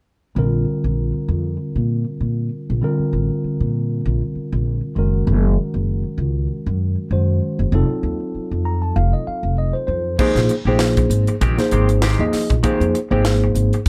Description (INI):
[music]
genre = electric jazz fusion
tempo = 98 BPM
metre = 4/4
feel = swing 56% on 16ths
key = Bb major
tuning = A4 = 440 Hz
[part]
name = tine electric piano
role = accompaniment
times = 0.4-13.8 s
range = D3 to Bb5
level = -24 LUFS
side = equal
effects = overdrive
[part]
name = upright bass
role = bass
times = 0.4-13.9 s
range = F1 to Bb2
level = -21 LUFS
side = equal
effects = none
[part]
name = semi-hollow electric guitar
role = stabs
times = 10.2-13.8 s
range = Eb3 to G4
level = -29 LUFS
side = equal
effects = subtle chorus, slapback echo
[part]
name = crisp fusion drum kit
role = drums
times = 10.2-13.9 s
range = crash cymbal, hi-hat, kick drum, snare drum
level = -24 LUFS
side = equal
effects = none
[sound]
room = light reverb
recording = dark, warm production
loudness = -19 LUFS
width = mono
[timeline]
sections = 0.4-10.2 A section; 10.2-13.9 B section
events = tine electric piano fill 8.4-10.2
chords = 0.4 Bbadd9; 5.0 Gbadd9; 7.7 F7b9; 10.2 Bb13sus4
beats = | 0.37 0.98 1.60 2.21 | 2.83 3.44 4.06 4.67 | 5.28 5.90 6.51 7.13 | 7.74 8.35 8.97 9.58 | 10.19 10.81 11.42 12.03 | 12.64 13.26 13.87